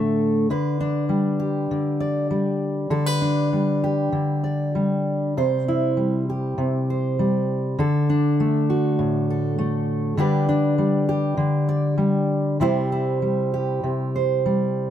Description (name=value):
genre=folk, solo fingerstyle acoustic guitar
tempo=99 BPM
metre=4/4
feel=rubato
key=C major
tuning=A4 = 440 Hz
part: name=fingerpicked steel-string acoustic guitar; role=solo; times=0.0-14.9 s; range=A2 to D5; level=-20 LUFS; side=equal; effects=none
room=light reverb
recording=none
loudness=-20 LUFS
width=side -10 dB against mid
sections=0.0-14.9 A section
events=none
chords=0.0 D; 0.5 G/D; 5.4 C; 7.8 D; 10.2 G/D; 12.6 C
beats=| 0.50 1.10 1.70 2.30 | 2.90 3.51 4.12 4.74 | 5.36 5.97 6.58 7.19 | 7.79 8.39 8.99 9.59 | 10.19 10.79 11.39 11.99 | 12.61 13.22 13.83 14.46